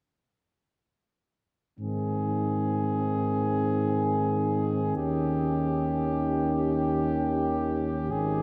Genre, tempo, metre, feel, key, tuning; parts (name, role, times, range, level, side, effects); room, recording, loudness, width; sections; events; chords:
classical, brass quintet; free time; Ab major; A4 = 442 Hz
warm flugelhorn; second line; 1.8-8.4 s; G4 to Ab4; -33 LUFS; equal
mellow French horn; accompaniment; 1.8-8.4 s; C4 to Db4; -33 LUFS; equal
warm trombone; accompaniment; 1.8-8.4 s; Eb3; -34 LUFS; equal
mellow tuba; bass; 1.8-8.4 s; Ab1 to Ab2; -33 LUFS; equal
moderate huge ambient reverb, RT60 7.5 s; in a vast, echoing space; -27 LUFS; mono
1.8-8.4 A section
1.8 Ab; 5.0 Eb7